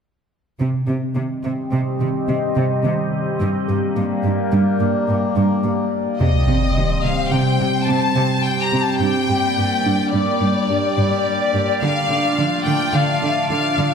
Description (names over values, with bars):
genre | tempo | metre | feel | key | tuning
cinematic | 107 BPM | 5/4 | straight | C dorian | A4 = 440 Hz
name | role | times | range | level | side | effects
evolving wavetable pad | sustained chords | 1.1-13.9 s | G3 to Eb5 | -21 LUFS | equal | phaser, built-in reverb, low-pass filter
harp-like synth pluck | arpeggios | 0.6-13.9 s | C3 to G4 | -23 LUFS | equal | chorus, low-pass filter, ping-pong delay
rich symphonic cello section | bass | 0.6-13.9 s | G2 to D3 | -23 LUFS | right 2 dB | none
clear studio violin section | melody | 6.2-13.9 s | D5 to Bb5 | -21 LUFS | left 4 dB | low-pass filter
sub drop | sound effects | 6.2-9.0 s | none | -21 LUFS | equal | none
room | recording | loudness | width
wet scoring stage reverb, RT60 1.7 s | none | -16 LUFS | side -6 dB against mid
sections
0.6-6.2 A section; 6.2-13.9 B section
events
filter sweep 0.6-6.2; impact 6.2-9.0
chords
0.6 Cm; 3.4 Gm; 6.2 Cm; 9.0 Gm; 11.8 Dm